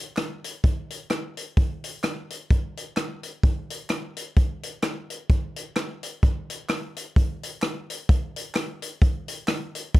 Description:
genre	ska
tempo	129 BPM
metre	4/4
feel	swing 58% on 8ths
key	none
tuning	none
part	swinging big-band drum kit	drums	0.2-10.0 s	hi-hat, kick drum, rim click	-22 LUFS	equal	none
part	group handclap	percussion	0.2-9.6 s	none	-36 LUFS	right 2 dB	none
room	little or no reverb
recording	dark, warm production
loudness	-24 LUFS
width	side -17 dB against mid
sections	0.0-10.0 A section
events	none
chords	none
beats	0.17 0.64 1.10 | 1.57 2.04 2.50 2.97 | 3.44 3.90 4.37 4.83 | 5.30 5.76 6.23 6.70 | 7.16 7.62 8.09 8.55 | 9.02 9.48 9.95

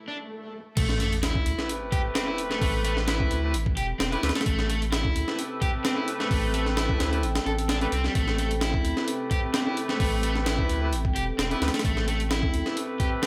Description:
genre	breakbeat, breaks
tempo	130 BPM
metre	4/4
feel	swing 54% on 16ths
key	A minor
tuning	A4 = 439 Hz
part	dark analog pad	sustained chords	2.4-13.3 s	C4 to E6	-37 LUFS	equal	chorus, phaser, sidechain pumping
part	swell and sub drop	sound effects	0.0-2.6 s	none	-39 LUFS	equal	none
part	crunchy overdriven guitar	riff	0.1-13.3 s	G3 to A4	-33 LUFS	equal	tube saturation, spring reverb, digital delay
part	saturated sub bass	bass	0.8-12.6 s	E1 to D2	-31 LUFS	equal	none
part	breakbeat sampler-style drum kit	drums	0.8-13.3 s	crash cymbal, hi-hat, kick drum, snare drum	-30 LUFS	equal	none
part	mellow horn section	stabs	1.6-13.3 s	A3 to B4	-36 LUFS	equal	digital delay
room	light reverb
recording	none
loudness	-26 LUFS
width	mono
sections	0.8-13.3 A section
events	swell 0.0-0.8; break 0.3-0.8; drop 0.8-13.3; impact 0.8-2.6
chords	0.0 Am; 0.8 Am9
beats	0.31 | 0.77 1.23 1.69 2.15 | 2.62 3.08 3.54 4.00 | 4.46 4.92 5.38 5.85 | 6.31 6.77 7.23 7.69 | 8.15 8.62 9.08 9.54 | 10.00 10.46 10.92 11.38 | 11.85 12.31 12.77 13.23

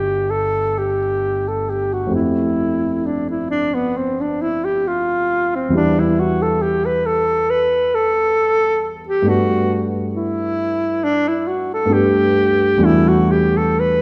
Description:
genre	classical, impressionist duo for alto saxophone and grand piano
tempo	67 BPM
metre	4/4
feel	uneven beats, rubato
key	G mixolydian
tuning	A4 = 441 Hz
part	warm alto saxophone	melody	0.0-14.0 s	B3 to B4	-20 LUFS	equal	none
part	dark concert grand piano	accompaniment	0.0-14.0 s	G1 to G4	-22 LUFS	equal	none
room	wet scoring stage reverb, RT60 1.9 s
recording	none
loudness	-18 LUFS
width	mono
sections	0.0-14.0 A section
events	none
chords	0.0 Gadd9; 2.1 Fadd9; 5.8 Em; 9.3 Gadd9; 12.9 Em11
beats	0.30 1.23 | 2.14 3.06 3.96 4.87 | 5.76 6.62 7.49 8.39 | 9.29 10.15 11.03 11.93 | 12.85 13.80

